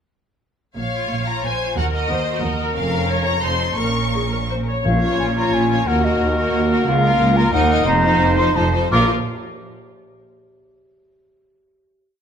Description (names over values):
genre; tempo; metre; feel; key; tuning
classical, dramatic, fast romantic movement for symphony orchestra; 159-184 BPM; 3/4; rubato; Bb minor; A4 = 437 Hz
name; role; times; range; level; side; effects
clear symphonic violin section; melody; 0.8-9.1 s; Bb4 to Db6; -26 LUFS; left 3 dB; none
rich symphonic viola section; accompaniment; 0.8-9.1 s; F3 to Db5; -25 LUFS; left 1 dB; none
clear symphonic double bass section; bass; 0.8-9.1 s; F1 to Eb2; -23 LUFS; right 3 dB; none
rich symphonic cello section; bass; 0.8-9.1 s; Db2 to Bb2; -24 LUFS; right 3 dB; none
rich symphonic violin section; second line; 0.9-9.1 s; Db4 to Db5; -27 LUFS; left 2 dB; none
clear oboe; second line; 4.8-9.1 s; Bb4 to Db5; -26 LUFS; right 1 dB; none
dark French horn section; sustained chords; 4.8-9.1 s; Bb3 to Gb4; -25 LUFS; left 4 dB; none
bright clarinet; second line; 4.9-9.1 s; Eb4 to Gb4; -27 LUFS; right 1 dB; none
mellow concert flute; second line; 4.9-9.1 s; Eb5 to D6; -21 LUFS; left 2 dB; none
timpani; percussion; 4.9-5.3, 8.9-9.1 s; Bb2; -26 LUFS; left 1 dB; none
room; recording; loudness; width
moderate scoring stage reverb, RT60 1.8 s; none; -16 LUFS; side -8 dB against mid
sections
0.8-4.9 A section; 4.9-8.9 A section; 8.9-10.0 final chord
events
none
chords
0.8 Bbm; 1.8 Ebm; 2.8 Bbm/F; 3.4 F7; 3.8 Bbm; 5.9 Ebm; 6.9 Bbm/Db; 7.5 Ebm; 7.9 F7sus4; 8.9 Bb5